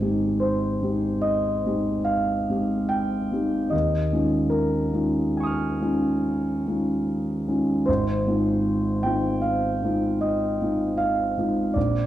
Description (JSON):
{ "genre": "classical, impressionist solo piano", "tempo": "68-79 BPM", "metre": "5/4", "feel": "rubato", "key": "Ab major", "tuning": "A4 = 438 Hz", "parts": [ { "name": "warm concert grand piano", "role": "solo", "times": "0.0-12.1 s", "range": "Ab1 to F6", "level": "-21 LUFS", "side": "equal", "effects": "none" } ], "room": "wet recital hall reverb, RT60 1.4 s", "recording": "none", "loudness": "-21 LUFS", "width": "side -13 dB against mid", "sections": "0.0-12.1 A section", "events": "none", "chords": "0.0 Abmaj7; 3.7 Eb11; 7.9 Ab6" }